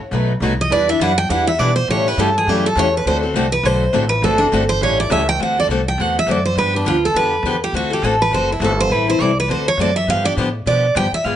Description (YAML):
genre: acoustic string swing (jazz manouche)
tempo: 205 BPM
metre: 4/4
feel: swing 57% on 8ths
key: D mixolydian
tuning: A4 = 438 Hz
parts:
  - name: picked steel-string acoustic guitar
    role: accompaniment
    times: 0.1-11.4 s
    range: B2 to B4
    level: -21 LUFS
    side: left 5 dB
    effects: none
  - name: picked steel-string acoustic guitar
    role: accompaniment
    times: 0.1-5.2 s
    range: B2 to B4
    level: -24 LUFS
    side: right 5 dB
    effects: none
  - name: upright bass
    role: bass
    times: 0.1-11.4 s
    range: F#1 to B2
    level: -21 LUFS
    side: equal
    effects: none
  - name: picked steel-string acoustic guitar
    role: melody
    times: 0.6-11.3 s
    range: D4 to G5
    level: -17 LUFS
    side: right 2 dB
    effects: plate reverb
room: light reverb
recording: nothing above 10.5 kHz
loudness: -14 LUFS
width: side -10 dB against mid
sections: 0.0-5.4 A section; 5.4-11.4 A section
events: steel-string acoustic guitar solo 0.0-11.4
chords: 0.1 B7b9; 0.7 Em7; 1.9 A7; 3.1 D7; 4.8 A7; 5.4 D7; 6.6 G7; 7.7 D7; 8.9 Am7; 9.5 D7; 10.1 G7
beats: 0.13 0.42 | 0.71 1.00 1.30 1.59 | 1.88 2.18 2.47 2.76 | 3.05 3.35 3.64 3.93 | 4.22 4.52 4.81 5.10 | 5.39 5.69 5.98 6.27 | 6.57 6.86 7.15 7.44 | 7.74 8.03 8.32 8.62 | 8.91 9.20 9.49 9.79 | 10.08 10.37 10.66 10.96 | 11.25